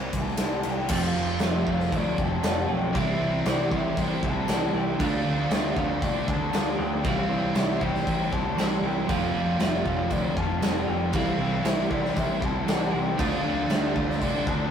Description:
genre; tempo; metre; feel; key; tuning
rock, shoegaze and dream pop; 117 BPM; 4/4; straight; C major; A4 = 440 Hz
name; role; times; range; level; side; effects
pure breathy sine lead; melody; 0.0-14.7 s; C5 to A5; -32 LUFS; left 1 dB; chorus
twangy electric guitar; arpeggios; 0.0-14.7 s; E3 to F4; -38 LUFS; left 4 dB; none
overdriven semi-hollow guitar; riff; 0.0-14.7 s; C3 to F4; -30 LUFS; right 3 dB; none
thick fuzz guitar; riff; 0.0-14.7 s; F2 to G4; -34 LUFS; left 4 dB; distortion
growling picked electric bass; bass; 0.0-14.7 s; F1 to D2; -33 LUFS; equal; overdrive
big rock drum kit; drums; 0.1-14.6 s; crash cymbal, kick drum, ride cymbal, snare drum; -27 LUFS; equal; none
biting overdriven guitar; riff; 0.9-14.7 s; F2 to D4; -33 LUFS; right 1 dB; none
tambourine; percussion; 1.4-13.8 s; none; -47 LUFS; right 4 dB; none
room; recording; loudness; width
moderate stone room reverb, RT60 1.1 s; rough rehearsal-room recording, warm saturation; -23 LUFS; side -8 dB against mid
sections
0.9-14.7 A section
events
none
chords
0.0 C7; 0.9 F; 2.9 C; 5.0 Dm7; 7.0 C; 9.1 Fadd9; 11.1 C; 13.2 Dm7

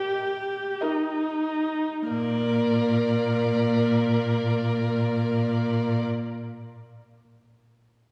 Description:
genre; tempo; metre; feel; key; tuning
classical, slow romantic movement for string quartet; 44-56 BPM; 3/4; rubato; Bb major; A4 = 441 Hz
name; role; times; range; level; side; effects
warm violin; melody; 0.0-6.1 s; D5 to Eb5; -37 LUFS; equal; none
rich violin; second line; 0.0-6.0 s; Bb4; -32 LUFS; equal; none
warm viola; accompaniment; 0.0-6.0 s; Bb3 to G4; -28 LUFS; equal; none
rich cello; bass; 2.1-6.0 s; Bb2; -29 LUFS; equal; none
room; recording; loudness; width
wet concert hall reverb, RT60 2.5 s; heard from further back in the room, small room ambience; -25 LUFS; mono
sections
0.0-2.1 A section; 2.1-5.6 B section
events
slowing down 0.0-2.1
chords
0.0 Eb; 2.1 Bb

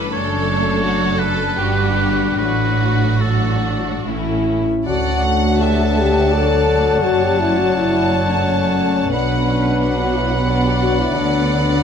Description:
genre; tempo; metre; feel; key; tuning
classical, slow romantic movement for symphony orchestra; 72-90 BPM; 3/4; rubato; D major; A4 = 440 Hz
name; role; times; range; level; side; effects
warm studio violin section; melody; 0.0-11.8 s; E4 to A5; -26 LUFS; left 2 dB; none
warm studio violin section; second line; 0.0-11.8 s; F#4 to F#5; -27 LUFS; left 2 dB; none
warm studio viola section; accompaniment; 0.0-11.8 s; F#3 to E4; -26 LUFS; equal; none
concert harp; arpeggios; 0.0-11.8 s; F#2 to E5; -27 LUFS; left 12 dB; none
rich studio double bass section; bass; 0.0-11.8 s; F#1 to D2; -23 LUFS; right 5 dB; none
warm studio cello section; bass; 0.0-11.8 s; D2 to D3; -21 LUFS; right 1 dB; none
clear oboe; second line; 0.1-11.8 s; A4 to F#5; -25 LUFS; right 2 dB; none
mellow French horn section; sustained chords; 4.1-11.8 s; B3 to A4; -20 LUFS; left 4 dB; none
clear clarinet; second line; 4.9-11.8 s; B4 to D5; -28 LUFS; left 1 dB; none
mellow hollow silver concert flute; second line; 4.9-11.8 s; A5 to B5; -27 LUFS; left 2 dB; none
mellow bassoon; accompaniment; 4.9-11.8 s; F#3; -27 LUFS; left 2 dB; none
room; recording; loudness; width
light reverb; close, detailed microphones; -15 LUFS; side -7 dB against mid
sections
0.0-4.9 A section; 4.9-11.8 B section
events
none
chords
0.1 D/F#; 1.6 Gmaj7; 2.4 D/A; 4.1 A; 4.9 D; 7.0 D/F#; 9.1 Bm; 11.1 Bm/D

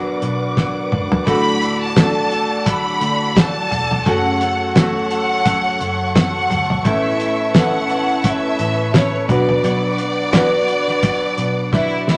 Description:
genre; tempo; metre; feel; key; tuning
piano-driven pop; 86 BPM; 4/4; swing 56% on 16ths; D major; A4 = 440 Hz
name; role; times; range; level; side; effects
warm concert grand piano; accompaniment; 0.0-12.2 s; A2 to B4; -25 LUFS; equal; none
warm studio string section; sustained chords; 0.0-12.2 s; A4 to D6; -28 LUFS; equal; none
twelve-string electric guitar; riff; 0.0-12.2 s; F#2 to B4; -27 LUFS; equal; spring reverb
vintage muted picked electric bass; bass; 0.0-12.2 s; E1 to D2; -28 LUFS; equal; none
damped 70s drum kit; drums; 0.2-12.2 s; hi-hat, kick drum, snare drum, toms; -19 LUFS; equal; none
bright studio violin section; melody; 1.3-12.2 s; E4 to B5; -23 LUFS; equal; none
room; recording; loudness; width
wet club reverb, RT60 0.8 s; none; -17 LUFS; mono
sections
0.0-12.2 A section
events
drum fill 0.6-1.3, 11.7-12.2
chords
0.0 Bm; 1.3 D; 4.1 F#m; 6.8 Aadd9; 9.3 Bm

